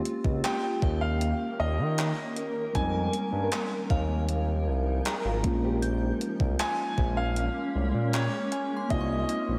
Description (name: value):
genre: contemporary R&B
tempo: 78 BPM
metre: 4/4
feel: straight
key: unclear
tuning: A4 = 440 Hz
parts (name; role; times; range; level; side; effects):
- muted felt-like synth keys; accompaniment; 0.0-9.6 s; G3 to G4; -36 LUFS; equal; chorus
- granular cloud pad; sustained chords; 0.0-9.6 s; Eb3 to Ab5; -37 LUFS; equal; built-in reverb, ensemble chorus
- gated 80s digital drum machine; drums; 0.1-9.5 s; handclaps, hi-hat, kick drum; -34 LUFS; equal; gated reverb, overdrive
- smooth synth bass; bass; 0.2-9.6 s; Ab1 to Eb3; -31 LUFS; equal; none
- clear grand piano; melody; 0.4-9.6 s; Db5 to Ab5; -36 LUFS; equal; subtle chorus, diffuse ambient delay
- glassy synth bell; texture; 0.8-9.6 s; F5 to G6; -44 LUFS; equal; chorus, phaser, diffuse ambient delay
- nylon-string guitar; arpeggios; 5.1-6.8 s; Eb4 to C5; -41 LUFS; equal; ensemble chorus, diffuse ambient delay
room: wet lush hall reverb, RT60 2.9 s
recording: dreamy mix soaked in reverb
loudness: -28 LUFS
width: mono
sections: 0.0-9.6 A section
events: none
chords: 0.0 Eb7; 2.8 Fm9; 5.4 Bbm9; 8.9 Ab69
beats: 0.44 1.21 1.98 | 2.75 3.52 4.29 5.06 | 5.83 6.60 7.37 8.14 | 8.90